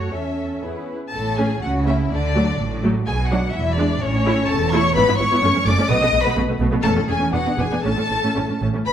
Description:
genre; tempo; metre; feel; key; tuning
quick classical-period movement for string orchestra; 113-129 BPM; 2/4; rubato; A major; A4 = 441 Hz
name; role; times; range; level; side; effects
rich chamber violin section; melody; 0.0-8.9 s; C#5 to D#6; -24 LUFS; left 2 dB; none
warm symphonic violin section; second line; 0.0-8.9 s; C#4 to D#5; -25 LUFS; left 4 dB; none
dark symphonic viola section; accompaniment; 0.0-8.8 s; F#3 to F#4; -23 LUFS; equal; none
dark symphonic double bass section; bass; 0.0-8.9 s; E1 to F#2; -24 LUFS; right 2 dB; none
rich symphonic cello section; bass; 0.0-8.9 s; E2 to F#4; -25 LUFS; right 2 dB; none
room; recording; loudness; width
moderate recital hall reverb, RT60 1.4 s; dark, warm production; -17 LUFS; side -9 dB against mid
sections
0.0-1.1 A section; 1.1-8.9 B section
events
none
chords
0.1 A/E; 0.6 E; 1.1 A; 1.6 A/C#; 2.1 D; 3.1 Bm; 3.6 E7; 4.0 A; 5.0 E/G#; 5.4 F#m; 5.9 B7; 6.8 A/E; 7.3 E7; 7.8 A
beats
| 0.11 0.63 | 1.14 1.63 | 2.11 2.60 | 3.08 3.55 | 4.03 4.50 | 4.97 5.43 | 5.90 6.37 | 6.84 7.33 | 7.84 8.35 | 8.86

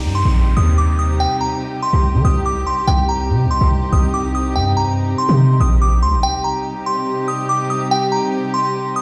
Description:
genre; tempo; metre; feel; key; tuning
hip hop; 143 BPM; 4/4; half-time; C minor; A4 = 440 Hz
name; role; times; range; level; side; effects
dark studio string section; sustained chords; 0.0-9.0 s; C3 to G4; -25 LUFS; equal; none
hard-hitting 808-style bass; bass; 0.0-6.2 s; Bb1 to Eb3; -17 LUFS; equal; none
downlifter; sound effects; 0.0-2.9 s; none; -38 LUFS; equal; none
delicate synth tine bell; melody; 0.1-9.0 s; G5 to Eb6; -22 LUFS; equal; chorus, tape echo
room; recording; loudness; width
light reverb, digital ambience; played on a big sound system in a bare room, stone room reverb; -17 LUFS; mono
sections
0.0-6.2 A section; 6.2-9.0 B section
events
none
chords
0.0 Cm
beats
0.36 0.78 | 1.20 1.62 2.04 2.46 | 2.88 3.30 3.72 4.13 | 4.55 4.97 5.39 5.81 | 6.23 6.65 7.07 7.49 | 7.91 8.33 8.75

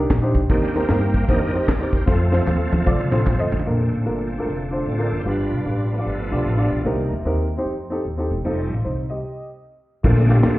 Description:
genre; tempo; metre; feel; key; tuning
uptempo gospel; 151 BPM; 4/4; swing 64% on 8ths; Bb major; A4 = 440 Hz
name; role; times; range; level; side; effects
warm upright piano; accompaniment; 0.0-10.6 s; G2 to Eb5; -24 LUFS; equal; none
upright bass; bass; 0.0-10.6 s; E1 to G2; -22 LUFS; equal; none
tight funk drum kit; drums; 0.1-3.7, 10.0-10.6 s; crash cymbal, hi-hat, kick drum, ride cymbal, snare drum, toms; -20 LUFS; equal; none
handclaps and tambourine; percussion; 0.1-3.6 s; none; -38 LUFS; right 2 dB; none
bright tonewheel organ; sustained chords; 0.5-10.6 s; D3 to F5; -26 LUFS; right 2 dB; slow rotary speaker, chorus vibrato
room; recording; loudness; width
light reverb, studio ambience; heard muffled through a wall, stone room reverb, EQ; -18 LUFS; side -17 dB against mid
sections
0.0-3.7 A section; 3.7-10.0 B section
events
tonewheel organ solo 0.0-3.7, 3.7-10.0; drum fill 2.1-3.7; stop 9.2-10.0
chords
0.5 Cm7/Eb; 2.1 F; 3.7 Bbmaj7; 5.3 G7; 6.9 Cm7; 8.5 F7; 10.0 Bbmaj7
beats
0.10 | 0.49 0.89 1.28 1.68 | 2.08 2.47 2.87 3.27 | 3.67 4.06 4.46 4.86 | 5.26 5.66 6.06 6.46 | 6.86 7.25 7.65 8.05 | 8.45 8.85 9.25 9.64 | 10.04 10.44

